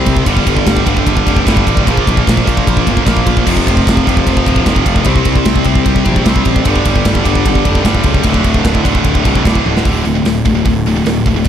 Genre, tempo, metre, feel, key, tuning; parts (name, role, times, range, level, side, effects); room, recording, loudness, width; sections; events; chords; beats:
heavy metal; 150 BPM; 4/4; straight; D minor; A4 = 441 Hz
heavy high-gain guitar; riff; 0.0-11.5 s; D2 to C4; -18 LUFS; left 13 dB; distortion
heavy high-gain guitar; riff; 0.0-11.5 s; D2 to C4; -17 LUFS; right 13 dB; distortion
high-gain distorted guitar; riff; 0.0-9.8 s; D2 to C4; -18 LUFS; equal; distortion
fuzz picked electric bass; bass; 0.1-11.5 s; D1 to C#2; -16 LUFS; equal; overdrive
tight metal drum kit; drums; 0.1-11.5 s; crash cymbal, hi-hat, kick drum, ride cymbal, snare drum, toms; -14 LUFS; equal
light reverb; dark, warm production; -10 LUFS; side -9 dB against mid
0.0-9.9 A section; 9.9-11.5 B section
drum fill 9.7
0.3 G5; 1.9 Bb5; 3.5 F5; 5.1 C5; 6.7 G5; 8.3 D5
| 0.27 0.67 1.07 1.47 | 1.87 2.27 2.67 3.07 | 3.47 3.87 4.26 4.66 | 5.06 5.46 5.86 6.26 | 6.66 7.06 7.46 7.85 | 8.25 8.65 9.05 9.45 | 9.85 10.25 10.65 11.06 | 11.46